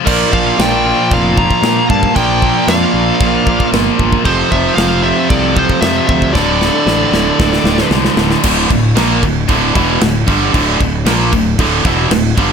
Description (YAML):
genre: heavy metal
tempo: 115 BPM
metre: 4/4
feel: straight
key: D minor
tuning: A4 = 441 Hz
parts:
  - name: dark smooth lead guitar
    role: second line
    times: 0.0-7.9 s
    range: A4 to F5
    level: -24 LUFS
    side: right 5 dB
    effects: overdrive
  - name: scooped high-gain guitar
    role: riff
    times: 0.0-12.5 s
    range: D2 to Bb3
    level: -18 LUFS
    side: left 11 dB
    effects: distortion
  - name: high-gain lead guitar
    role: melody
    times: 0.1-7.9 s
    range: C5 to Bb5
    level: -18 LUFS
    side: left 1 dB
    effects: distortion, ping-pong delay
  - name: distorted electric guitar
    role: riff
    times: 0.1-12.5 s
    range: D2 to Bb3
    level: -17 LUFS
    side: right 14 dB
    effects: overdrive
  - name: tight distorted guitar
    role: riff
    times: 0.1-12.5 s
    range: D2 to Bb3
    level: -19 LUFS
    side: equal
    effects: distortion
  - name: fuzz fingered electric bass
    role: bass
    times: 0.1-12.5 s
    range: D1 to Bb2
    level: -18 LUFS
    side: equal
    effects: overdrive
  - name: modern studio drum kit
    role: drums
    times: 0.1-12.5 s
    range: china cymbal, crash cymbal, kick drum, snare drum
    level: -17 LUFS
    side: equal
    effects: none
room: little or no reverb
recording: none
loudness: -10 LUFS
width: side -6 dB against mid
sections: 0.0-8.4 A section; 8.4-12.5 B section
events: drum fill 6.3-8.4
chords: 0.1 Bb; 4.3 F5; 6.3 D5; 8.4 Dm